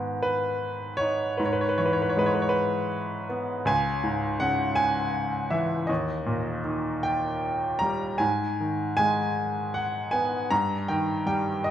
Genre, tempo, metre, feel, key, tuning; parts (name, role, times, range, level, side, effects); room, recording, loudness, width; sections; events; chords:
classical, lyrical solo piano; 52 BPM (dotted quarters); 6/8; rubato; G# minor; A4 = 440 Hz
clear baby grand piano; solo; 0.0-11.7 s; C#2 to A#5; -24 LUFS; equal
moderate recital hall reverb, RT60 1.4 s; recorded in a church or concert hall; -24 LUFS; side -10 dB against mid
0.0-11.7 A section
0.0 G#m; 1.4 E/G#; 3.7 C#m; 5.9 D#; 8.2 G#m; 10.5 D#/G